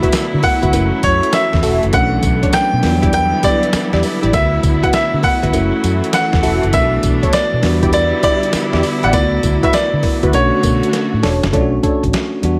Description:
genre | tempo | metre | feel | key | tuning
R&B, new jack swing | 100 BPM | 4/4 | swing 67% on 16ths | B minor | A4 = 439 Hz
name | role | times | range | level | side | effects
bright grand piano | melody | 0.0-10.9 s | C#5 to G5 | -20 LUFS | equal | tape echo
bell-like tine electric piano | accompaniment | 0.0-12.6 s | F#3 to F#4 | -22 LUFS | equal | none
clear studio string section | sustained chords | 0.0-11.5 s | D3 to F#4 | -25 LUFS | equal | none
funky polysynth comp | stabs | 0.0-12.0 s | D4 to E5 | -24 LUFS | equal | chorus
boom bap sampler-style drum kit | drums | 0.0-12.6 s | hi-hat, kick drum, snare drum, tambourine | -22 LUFS | equal | none
vintage muted fingered electric bass | bass | 0.1-12.6 s | E1 to D3 | -21 LUFS | equal | none
cowbell | percussion | 0.1-11.1 s | none | -32 LUFS | equal | none
room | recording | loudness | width
light reverb, digital ambience | none | -15 LUFS | mono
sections
0.0-11.5 A section; 11.5-12.6 B section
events
drum fill 10.9-11.5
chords
0.0 D69; 0.7 F#m7; 1.9 Bm9; 2.8 Em7; 4.3 D69; 5.5 F#m7; 6.7 Bm7; 7.6 Em7; 9.1 D69; 10.3 Bm9

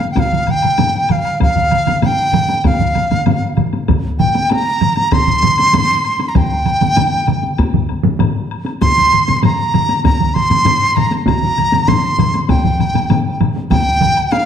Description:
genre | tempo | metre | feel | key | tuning
japanese traditional, taiko drum ensemble | 97 BPM | 4/4 | straight | unclear | A4 = 440 Hz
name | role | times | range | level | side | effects
mellow dizi | melody | 0.0-14.5 s | F5 to C6 | -15 LUFS | right 1 dB | none
taiko ensemble | percussion | 0.0-14.5 s | none | -21 LUFS | left 1 dB | none
woodblock | percussion | 0.0-14.5 s | none | -31 LUFS | left 7 dB | none
taiko ensemble | percussion | 0.2-14.2 s | none | -20 LUFS | left 6 dB | none
taiko ensemble | percussion | 0.2-14.2 s | none | -19 LUFS | right 5 dB | none
taiko ensemble | percussion | 0.2-13.9 s | none | -19 LUFS | equal | none
room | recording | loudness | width
wet recital hall reverb, RT60 1.4 s | dark, warm production | -12 LUFS | side -8 dB against mid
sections
0.0-14.5 A section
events
none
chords
none

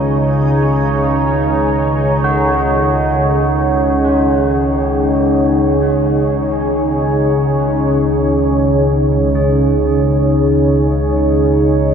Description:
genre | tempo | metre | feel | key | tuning
dark ambient drone | free time | none | none | unclear | A4 = 440 Hz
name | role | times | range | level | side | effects
deep dark ambient pad | sustained chords | 0.0-11.9 s | D#4 to C#5 | -15 LUFS | right 1 dB | chorus, built-in reverb
tubular bells | arpeggios | 0.0-11.9 s | D#4 to G#4 | -25 LUFS | equal | tape echo
analog drone | drone | 0.0-11.9 s | C#2 to C#3 | -15 LUFS | equal | chorus
backwards swelling texture | texture | 0.0-5.8 s | D#4 to D#5 | -43 LUFS | left 2 dB | none
room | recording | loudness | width
wet huge ambient reverb, RT60 7.3 s | in a vast, echoing space | -12 LUFS | side -7 dB against mid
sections
0.0-5.8 A section; 5.8-11.9 B section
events
none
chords
0.0 C#sus2

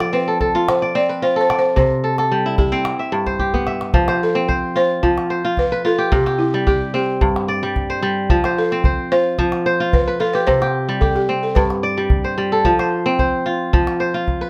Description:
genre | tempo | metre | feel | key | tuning
west african traditional, West African string and xylophone music | 110 BPM | 4/4 | straight | F lydian | A4 = 440 Hz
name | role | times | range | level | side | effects
balafon | melody | 0.0-12.3 s | E4 to D5 | -22 LUFS | equal | none
kora | arpeggios | 0.0-14.5 s | G2 to E5 | -20 LUFS | equal | none
calabash | percussion | 0.0-14.4 s | none | -23 LUFS | equal | none
room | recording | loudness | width
light reverb | none | -18 LUFS | mono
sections
0.0-3.9 A section; 3.9-14.5 B section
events
drum fill 3.4-3.9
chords
0.0 F; 1.8 C; 2.9 G; 3.9 F; 6.1 C5; 7.2 G5; 8.3 F; 10.5 C5; 11.6 G; 12.6 F

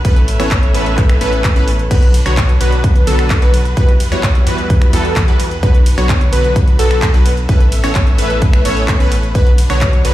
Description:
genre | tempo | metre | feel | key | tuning
EDM, festival progressive house | 129 BPM | 4/4 | straight | B minor | A4 = 440 Hz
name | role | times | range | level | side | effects
warm symphonic string section | sustained chords | 0.0-10.1 s | E3 to E5 | -24 LUFS | equal | sidechain pumping
plucky unison lead | arpeggios | 0.0-10.1 s | A4 to C#5 | -21 LUFS | left 1 dB | sidechain pumping, digital delay
supersaw stab | riff | 0.0-10.1 s | D3 to C#5 | -20 LUFS | right 1 dB | sidechain pumping, digital delay
saturated sub bass | bass | 0.0-10.1 s | A1 to E2 | -17 LUFS | equal | sidechain pumping
big-room dance drum kit | drums | 0.0-10.1 s | crash cymbal, finger snaps, handclaps, hi-hat, ride cymbal | -23 LUFS | equal | overdrive, studio reverb
electronic kick drum | drums | 0.0-9.9 s | none | -12 LUFS | equal | studio reverb
room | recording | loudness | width
little or no reverb | played on a big sound system in a bare room, large studio reverb | -10 LUFS | side -14 dB against mid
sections
0.0-10.1 A section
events
none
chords
0.0 Aadd9; 1.9 Bm; 3.8 Emadd9; 5.6 Bm; 7.5 Aadd9; 9.3 Bm

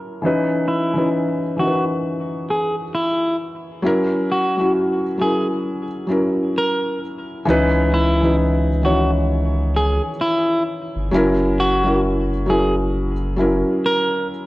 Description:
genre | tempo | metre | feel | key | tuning
lo-fi hip hop | 66 BPM | 4/4 | swing 62% on 16ths | C# dorian | A4 = 445 Hz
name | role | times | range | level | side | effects
felt-muted upright piano | accompaniment | 0.0-14.5 s | D#3 to C#5 | -19 LUFS | equal | cassette tape, low-pass filter
semi-hollow electric guitar | melody | 0.7-14.3 s | E4 to A#4 | -22 LUFS | equal | spring reverb, low-pass filter, analog delay
saturated sub bass | bass | 7.5-13.6 s | F#1 to C#2 | -21 LUFS | equal | none
room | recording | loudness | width
light reverb, studio reverb | dry, gritty hardware recording, cassette tape | -17 LUFS | side -18 dB against mid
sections
0.0-7.5 A section; 7.5-14.5 B section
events
filter sweep 0.0-7.5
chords
0.2 C#m9; 3.8 F#7; 7.5 C#m9; 11.1 F#7

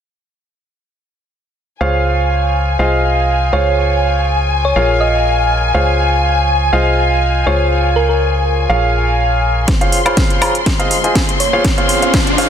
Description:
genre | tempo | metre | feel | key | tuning
piano house | 122 BPM | 4/4 | swing 54% on 16ths | Db major | A4 = 440 Hz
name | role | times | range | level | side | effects
dark studio string section | sustained chords | 1.8-12.5 s | Ab5 to C6 | -19 LUFS | left 3 dB | sidechain pumping
warm grand piano | riff | 1.8-12.5 s | F4 to Bb5 | -16 LUFS | right 1 dB | sidechain pumping, low-pass filter, tape echo
organ-like FM bass | bass | 1.8-9.7 s | Bb1 to Db2 | -16 LUFS | equal | sidechain pumping
thumb-piano-like synth pluck | melody | 3.5-8.2, 11.4-12.1 s | Bb4 to Eb5 | -19 LUFS | right 1 dB | chorus, tape echo
electronic kick drum | drums | 9.7-12.2 s | none | -16 LUFS | equal | overdrive
house drum kit | drums | 9.7-12.5 s | hi-hat, snare drum, woodblock | -18 LUFS | equal | overdrive
riser | sound effects | 10.8-12.5 s | none | -21 LUFS | right 1 dB | none
room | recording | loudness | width
moderate lush hall reverb, RT60 2.1 s | dense, heavily limited modern master | -12 LUFS | side -8 dB against mid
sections
1.8-9.7 A section; 9.7-12.5 B section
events
build-up 9.7-12.5; drum fill 9.7-12.5; filter sweep on synth pluck 9.7-12.5; riser 10.8-12.5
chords
1.8 Dbmaj7; 2.8 Fm7/C; 3.5 Dbmaj7; 4.8 Bbm7; 5.7 Dbmaj7; 6.7 Fm7/C; 7.5 Dbmaj7; 8.7 Bbm7; 9.7 Dbmaj7; 10.7 Fm7; 11.4 Dbmaj7

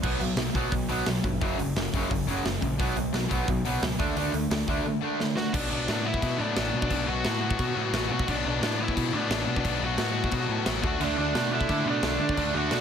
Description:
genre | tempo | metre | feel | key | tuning
punk rock | 175 BPM | 4/4 | straight | B minor | A4 = 440 Hz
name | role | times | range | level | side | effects
distorted electric guitar | riff | 0.0-12.8 s | F#2 to D4 | -31 LUFS | left 14 dB | overdrive
overdriven semi-hollow guitar | riff | 0.0-5.5, 11.0-12.8 s | F#2 to D4 | -30 LUFS | right 11 dB | none
fuzz picked electric bass | bass | 0.0-12.8 s | F#1 to D3 | -31 LUFS | equal | overdrive
big rock drum kit | drums | 0.0-12.8 s | crash cymbal, hi-hat, kick drum, snare drum | -30 LUFS | equal | none
high-gain lead guitar | melody | 5.4-12.8 s | D4 to F#5 | -30 LUFS | right 2 dB | distortion, tape echo
room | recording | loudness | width
light reverb | none | -24 LUFS | side -8 dB against mid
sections
0.0-5.5 A section; 5.5-12.8 B section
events
drum fill 5.2-5.5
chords
0.0 B5; 1.4 F#5; 2.8 B5; 4.0 D; 5.5 Bm; 10.8 D

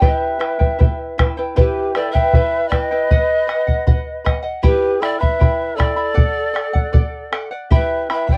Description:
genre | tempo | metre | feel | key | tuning
andean folk, Andean ensemble | 78 BPM | 2/4 | straight | E minor | A4 = 440 Hz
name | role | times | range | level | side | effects
mellow pan flute | melody | 0.0-8.4 s | B4 to G5 | -23 LUFS | equal | none
reedy large quena | second line | 0.0-8.4 s | G4 to D5 | -27 LUFS | equal | none
charango | accompaniment | 0.0-8.4 s | E4 to B5 | -25 LUFS | equal | none
bombo | percussion | 0.0-8.4 s | none | -18 LUFS | equal | none
room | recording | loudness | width
light reverb | dry, close 1970s-style studio recording | -17 LUFS | mono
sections
0.0-1.6 A section; 1.6-8.4 A section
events
none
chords
0.0 Em; 3.1 B; 4.6 Em; 6.2 D; 7.7 Em

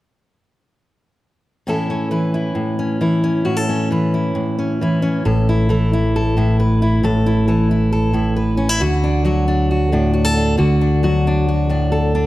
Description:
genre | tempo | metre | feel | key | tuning
indie folk with a building arrangement | 135 BPM | 4/4 | straight | A major | A4 = 440 Hz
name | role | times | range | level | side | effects
fingerpicked steel-string acoustic guitar | accompaniment | 1.7-12.3 s | A2 to B4 | -17 LUFS | equal | none
picked electric bass | bass | 5.3-12.3 s | A1 to D2 | -17 LUFS | equal | none
room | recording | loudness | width
moderate concert hall reverb, RT60 2.2 s | none | -15 LUFS | side -16 dB against mid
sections
1.7-5.3 A section; 5.3-12.3 B section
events
none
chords
1.7 A; 5.3 A5; 8.8 D

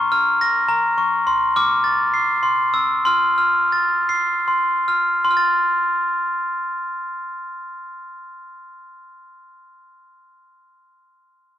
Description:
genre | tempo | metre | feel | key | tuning
children's music, lullaby | 67-106 BPM | 3/4 | straight | F major | A4 = 439 Hz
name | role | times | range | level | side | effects
glockenspiel with soft plastic mallets | solo | 0.0-9.9 s | Bb5 to C7 | -17 LUFS | equal | none
room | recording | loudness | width
light reverb | dry, close 1970s-style studio recording | -16 LUFS | side -11 dB against mid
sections
0.0-5.3 A section; 5.3-10.6 B section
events
slowing down 1.3-5.3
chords
0.0 Bbm; 1.3 F/C; 2.4 C; 3.1 F

